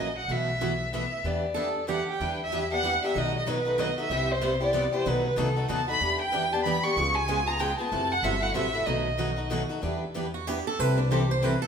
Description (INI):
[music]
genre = acoustic string swing (jazz manouche)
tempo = 188 BPM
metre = 3/4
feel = swing 60% on 8ths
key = E minor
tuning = A4 = 440 Hz
[part]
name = warm violin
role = melody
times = 0.0-9.5 s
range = A4 to C#6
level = -27 LUFS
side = equal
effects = none
[part]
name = picked steel-string acoustic guitar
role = accompaniment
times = 0.0-11.5 s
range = B2 to B4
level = -33 LUFS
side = right 3 dB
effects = none
[part]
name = picked swing-style acoustic guitar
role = accompaniment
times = 0.0-11.5 s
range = B2 to A4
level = -32 LUFS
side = left 4 dB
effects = none
[part]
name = upright bass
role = bass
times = 0.0-11.6 s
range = G1 to F#2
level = -32 LUFS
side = left 1 dB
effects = none
[part]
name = picked swing-style acoustic guitar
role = second line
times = 1.5-2.2, 10.3-11.7 s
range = D4 to C5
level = -30 LUFS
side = right 4 dB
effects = none
[sound]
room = wet stone room reverb, RT60 1.4 s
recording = band playing live in one room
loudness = -24 LUFS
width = side -7 dB against mid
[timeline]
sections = 0.0-2.2 A section; 2.2-9.8 B section; 9.8-11.7 C section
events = steel-string acoustic guitar solo 9.8-11.7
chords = 0.3 B7sus4; 1.2 Em7; 3.1 B7; 4.1 Cmaj7; 5.1 B7; 6.0 Em7; 7.0 C#7; 7.9 F#m7b5; 8.9 B7; 9.8 Em7; 10.8 C6